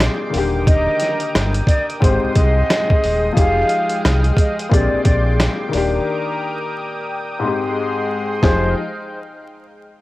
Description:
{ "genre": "hip hop, boom-bap hip-hop", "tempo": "89 BPM", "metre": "4/4", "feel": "swing 61% on 16ths", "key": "unclear", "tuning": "A4 = 441 Hz", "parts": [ { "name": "warm upright piano", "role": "accompaniment", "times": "0.0-8.8 s", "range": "Ab2 to Ab4", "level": "-22 LUFS", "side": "left 4 dB", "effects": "cassette tape, high-pass filter, low-pass filter, plate reverb" }, { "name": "lush unison pad", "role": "sustained chords", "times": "0.0-8.7 s", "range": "Ab3 to Eb6", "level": "-25 LUFS", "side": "equal", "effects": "chorus, high-pass filter, low-pass filter" }, { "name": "sub bass with octave", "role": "bass", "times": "0.0-8.7 s", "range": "Eb1 to C2", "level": "-19 LUFS", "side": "equal", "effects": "none" }, { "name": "dusty soul sampler-style drum kit", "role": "drums", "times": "0.0-8.6 s", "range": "hi-hat, kick drum, rim click, snare drum", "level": "-17 LUFS", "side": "equal", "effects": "cassette tape" }, { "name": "breathy mellow silver concert flute", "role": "melody", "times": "0.7-8.7 s", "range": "C5 to F5", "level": "-21 LUFS", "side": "right 1 dB", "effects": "high-pass filter, low-pass filter, cassette tape, analog delay" } ], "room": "light reverb", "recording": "home recording on cassette, vinyl crackle", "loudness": "-15 LUFS", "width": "side -17 dB against mid", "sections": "0.0-8.8 A section; 8.8-10.0 B section", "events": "break 6.1-8.8", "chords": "0.3 Ebmaj7; 2.0 Abmaj7; 3.4 Fm9; 4.7 Bb13; 5.7 Ebmaj7; 7.4 Abmaj7; 8.4 Fm9; 8.8 N.C.", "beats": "0.00 | 0.67 1.35 2.02 2.70 | 3.37 4.04 4.72 5.39 | 6.07 6.74 7.42 8.09 | 8.76" }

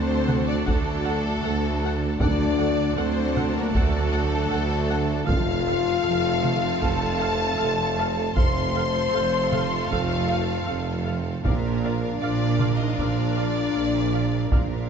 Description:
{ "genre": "cinematic, epic orchestral film score", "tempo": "78 BPM", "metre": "4/4", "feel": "straight", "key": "unclear", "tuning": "A4 = 440 Hz", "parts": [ { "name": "warm symphonic violin section", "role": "melody", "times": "0.0-14.9 s", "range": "A4 to C6", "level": "-32 LUFS", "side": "left 4 dB", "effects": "none" }, { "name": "warm symphonic violin section", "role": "second line", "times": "0.0-14.9 s", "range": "A4 to C6", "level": "-33 LUFS", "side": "left 3 dB", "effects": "none" }, { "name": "bright trombone section", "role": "sustained chords", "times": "0.0-14.9 s", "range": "F3 to D4", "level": "-35 LUFS", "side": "right 3 dB", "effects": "none" }, { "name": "mellow French horn section", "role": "sustained chords", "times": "0.0-14.9 s", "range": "A3 to C5", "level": "-28 LUFS", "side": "left 6 dB", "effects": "none" }, { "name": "rich symphonic string section", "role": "sustained chords", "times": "0.0-14.9 s", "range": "C4 to F5", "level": "-32 LUFS", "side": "equal", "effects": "none" }, { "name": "clear tuba", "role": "bass", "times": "0.0-14.9 s", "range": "F1 to D2", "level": "-33 LUFS", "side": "right 4 dB", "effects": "none" }, { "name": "dark symphonic double bass section", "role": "bass", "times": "0.0-14.9 s", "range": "F1 to D2", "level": "-29 LUFS", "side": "right 4 dB", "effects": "none" }, { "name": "rich symphonic cello section", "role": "bass", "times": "0.0-14.9 s", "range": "D2 to Bb2", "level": "-30 LUFS", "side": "right 4 dB", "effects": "none" }, { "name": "dark chamber viola section", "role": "accompaniment", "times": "0.3-14.6 s", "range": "A4 to F#5", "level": "-35 LUFS", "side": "right 3 dB", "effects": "none" }, { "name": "taiko ensemble", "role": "drums", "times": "0.3-14.9 s", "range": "none", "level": "-26 LUFS", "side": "right 1 dB", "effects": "none" } ], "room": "moderate scoring stage reverb, RT60 1.9 s", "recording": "nothing above 7.8 kHz", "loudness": "-21 LUFS", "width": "side -7 dB against mid", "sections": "0.0-14.9 A section", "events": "none", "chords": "0.0 D; 5.3 F; 11.4 Bb", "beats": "0.67 1.44 | 2.21 2.97 3.74 4.51 | 5.28 6.05 6.82 7.59 | 8.36 9.13 9.90 10.67 | 11.44 12.21 12.97 13.74 | 14.51" }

